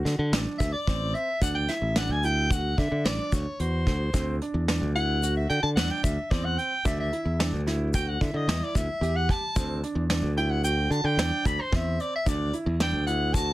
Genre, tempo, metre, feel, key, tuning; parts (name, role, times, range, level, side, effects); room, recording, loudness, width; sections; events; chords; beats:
progressive instrumental, band music in an uneven meter; 111 BPM; 5/4; straight; A4 = 439 Hz
warm soprano saxophone; melody; 0.0-13.5 s; C5 to B5; -29 LUFS; equal
warm concert grand piano; arpeggios; 0.0-13.5 s; C4 to G4; -34 LUFS; right 3 dB
modern bright fingered electric bass; bass; 0.1-13.5 s; A1 to D3; -27 LUFS; equal
vintage brush drum kit; drums; 0.1-13.5 s; hi-hat, kick drum, snare drum; -28 LUFS; equal; soft clipping on snare
tube shaker; percussion; 0.6-13.5 s; -40 LUFS; left 11 dB
light reverb; dense, heavily limited modern master; -24 LUFS; side -16 dB against mid
0.0-13.5 A section
soprano saxophone solo 0.0-13.5
0.0 D; 4.1 Am/D (rootless)
0.33 0.88 | 1.42 1.97 2.51 3.05 3.60 | 4.14 4.68 5.23 5.77 6.31 | 6.86 7.40 7.94 8.48 9.02 | 9.56 10.10 10.64 11.18 11.72 | 12.26 12.80 13.34